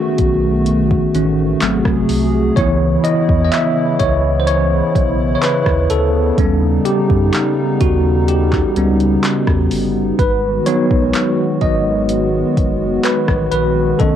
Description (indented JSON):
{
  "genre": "contemporary R&B",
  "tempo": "63 BPM",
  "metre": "4/4",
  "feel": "straight",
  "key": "unclear",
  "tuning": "A4 = 439 Hz",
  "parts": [
    { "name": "bell-like tine electric piano", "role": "accompaniment", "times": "0.0-14.2 s", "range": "D#3 to E5", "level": "-16 LUFS", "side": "equal", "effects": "fast stereo tremolo" },
    { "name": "hollow soft pad", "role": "sustained chords", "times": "0.0-14.2 s", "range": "B#2 to G#4", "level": "-18 LUFS", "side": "left 1 dB", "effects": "chorus, sidechain pumping" },
    { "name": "warm sub bass", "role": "bass", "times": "0.2-14.2 s", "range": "F#1 to F#2", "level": "-20 LUFS", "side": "equal", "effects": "none" },
    { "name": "smooth R&B drum kit", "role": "drums", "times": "0.2-14.2 s", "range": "handclaps, hi-hat, kick drum, rim click", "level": "-18 LUFS", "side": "equal", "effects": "overdrive, cassette tape" },
    { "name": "worn celesta", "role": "texture", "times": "5.0-6.8, 14.0-14.2 s", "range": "C#5 to D#5", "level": "-30 LUFS", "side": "left 2 dB", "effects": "none" }
  ],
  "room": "little or no reverb",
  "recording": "home recording on cassette",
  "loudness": "-13 LUFS",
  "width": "side -10 dB against mid",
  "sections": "0.0-14.2 A section",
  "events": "tine electric piano solo 0.0-14.2",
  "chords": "0.0 B7; 1.6 G#7b9; 2.6 C#m9; 6.4 D#7alt; 10.2 G#m7"
}